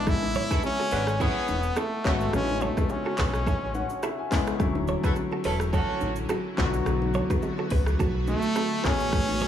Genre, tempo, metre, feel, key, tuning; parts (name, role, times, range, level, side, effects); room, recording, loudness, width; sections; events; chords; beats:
afrobeats; 106 BPM; 4/4; swing 55% on 16ths; A major; A4 = 440 Hz
clear trumpet; melody; 0.0-4.0, 8.3-9.5 s; A3 to E4; -29 LUFS; equal; analog delay
warm grand piano; accompaniment; 0.0-9.5 s; C#3 to G#5; -30 LUFS; left 5 dB
sub bass with octave; bass; 0.0-9.4 s; D1 to C#2; -29 LUFS; equal
afro-pop drum kit; drums; 0.1-9.5 s; handclaps, hi-hat, kick drum, rim click, shaker; -29 LUFS; equal
congas and bongos; percussion; 0.1-9.5 s; -36 LUFS; right 3 dB
direct-recorded clean electric guitar; riff; 0.4-9.5 s; E4 to C#5; -34 LUFS; right 5 dB; analog delay
warm horn section; second line; 0.5-6.7 s; A3 to A4; -32 LUFS; right 1 dB
granular cloud pad; sustained chords; 5.4-9.5 s; C#3 to G#4; -33 LUFS; right 3 dB; built-in reverb
light reverb, studio ambience; echo-heavy mix, small room ambience; -24 LUFS; side -10 dB against mid
0.0-9.5 A section
grand piano fill 3.5-4.6
0.0 Amaj9; 4.6 Dmaj9; 6.6 Bm7; 8.8 Amaj9
| 0.07 0.64 1.20 1.77 | 2.33 2.90 3.47 4.03 | 4.60 5.16 5.73 6.30 | 6.86 7.43 7.99 8.56 | 9.13